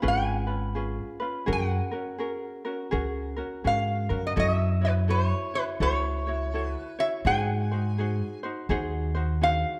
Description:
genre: Hawaiian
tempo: 83 BPM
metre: 4/4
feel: swing 63% on 8ths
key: F# major, F# minor from 4.4 s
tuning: A4 = 440 Hz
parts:
  - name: lap resonator guitar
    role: melody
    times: 0.0-9.8 s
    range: B4 to G#5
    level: -30 LUFS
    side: equal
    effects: none
  - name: ukulele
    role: accompaniment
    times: 0.0-9.8 s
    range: C#4 to C#5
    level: -34 LUFS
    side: equal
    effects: none
  - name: upright bass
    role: bass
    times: 0.0-9.6 s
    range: G#1 to G#2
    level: -30 LUFS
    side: equal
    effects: none
room: moderate recital hall reverb, RT60 1.4 s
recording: dark, warm production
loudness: -28 LUFS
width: mono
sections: 0.0-4.4 A section; 4.4-9.8 B section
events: none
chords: 0.0 C#7; 1.5 F#add9; 4.4 F#m7; 7.2 G#7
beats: 0.04 0.76 | 1.48 2.20 2.92 3.64 | 4.37 5.09 5.81 6.53 | 7.25 7.96 8.69 9.40

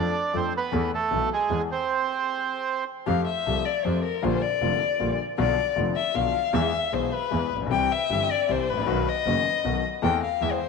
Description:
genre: tango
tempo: 156 BPM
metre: 3/4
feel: rubato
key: unclear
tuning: A4 = 440 Hz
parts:
  - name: bandoneon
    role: melody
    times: 0.0-2.8 s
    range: G#3 to D5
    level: -26 LUFS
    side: right 7 dB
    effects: none
  - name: warm grand piano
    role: accompaniment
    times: 0.0-10.6 s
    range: F1 to A4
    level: -29 LUFS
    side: left 9 dB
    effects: none
  - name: bright double bass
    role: bass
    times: 0.0-10.6 s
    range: F1 to F2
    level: -29 LUFS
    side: right 5 dB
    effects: none
  - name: dark violin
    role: second line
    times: 3.1-10.7 s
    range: Bb4 to G5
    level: -25 LUFS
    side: left 8 dB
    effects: none
room: moderate plate reverb, RT60 3.8 s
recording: 1960s-style stereo with parts hard left and right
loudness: -23 LUFS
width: side -4 dB against mid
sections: 0.0-3.1 A section; 3.1-10.7 B section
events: stop 1.9-3.1; violin solo 3.1-10.7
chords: 0.0 Dm/F; 0.7 Esus4; 1.5 E; 1.9 N.C.; 3.1 Fadd9; 4.2 Bb6; 5.4 Bdim; 6.5 E; 7.7 C; 8.9 B; 10.0 Am/E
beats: 0.34 | 0.73 1.11 1.50 | 1.89 2.28 2.67 | 3.07 3.46 3.84 | 4.23 4.61 5.00 | 5.38 5.77 6.15 | 6.54 6.92 7.32 | 7.71 8.10 8.49 | 8.87 9.26 9.64 | 10.03 10.41

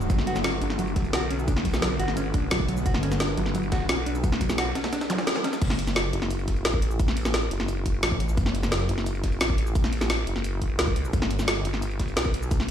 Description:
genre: dark technical drum and bass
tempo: 174 BPM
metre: 4/4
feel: straight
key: F# phrygian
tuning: A4 = 440 Hz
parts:
  - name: metallic inharmonic drone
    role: sustained chords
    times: 0.0-5.6 s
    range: D3 to B3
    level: -33 LUFS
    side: left 1 dB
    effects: chorus, built-in reverb, sidechain pumping
  - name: snarling distorted saw bass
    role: bass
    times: 0.0-3.4, 5.6-8.9, 11.1-11.6 s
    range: F#1 to B1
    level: -27 LUFS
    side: equal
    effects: distortion, overdrive
  - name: drum and bass drum kit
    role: drums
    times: 0.0-12.7 s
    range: crash cymbal, hi-hat, shaker, snare drum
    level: -28 LUFS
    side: equal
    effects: none
  - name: mellow electric guitar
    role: arpeggios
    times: 0.1-5.5 s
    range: F#3 to F#4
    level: -30 LUFS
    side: equal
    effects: tremolo, sidechain pumping, ping-pong delay
  - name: breakbeat sampler-style drum kit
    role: drums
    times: 0.1-12.7 s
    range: hi-hat, snare drum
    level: -36 LUFS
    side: equal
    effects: high-pass filter on hats, high-pass filter on snare
  - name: electronic kick drum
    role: drums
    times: 0.1-12.6 s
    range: none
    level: -25 LUFS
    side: equal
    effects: none
  - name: vowel-sweep wobble bass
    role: bass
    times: 0.6-12.7 s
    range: F#1 to C#2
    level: -28 LUFS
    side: equal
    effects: chorus
  - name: zap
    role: sound effects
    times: 5.1-5.2 s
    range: none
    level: -34 LUFS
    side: equal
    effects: none
room: light reverb, digital ambience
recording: played on a big sound system in a bare room, large studio reverb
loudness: -23 LUFS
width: side -9 dB against mid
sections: 0.0-5.6 A section; 5.6-12.7 A section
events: drop 0.0-5.6, 5.6-12.7; band accent 5.3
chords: 0.1 Gadd9; 5.6 F#m; 11.1 G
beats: | 0.10 0.44 0.79 1.13 | 1.48 1.82 2.17 2.51 | 2.86 3.20 3.55 3.89 | 4.24 4.58 4.93 5.27 | 5.62 5.96 6.30 6.65 | 7.00 7.34 7.68 8.03 | 8.37 8.72 9.06 9.41 | 9.75 10.10 10.44 10.79 | 11.13 11.48 11.82 12.17 | 12.51

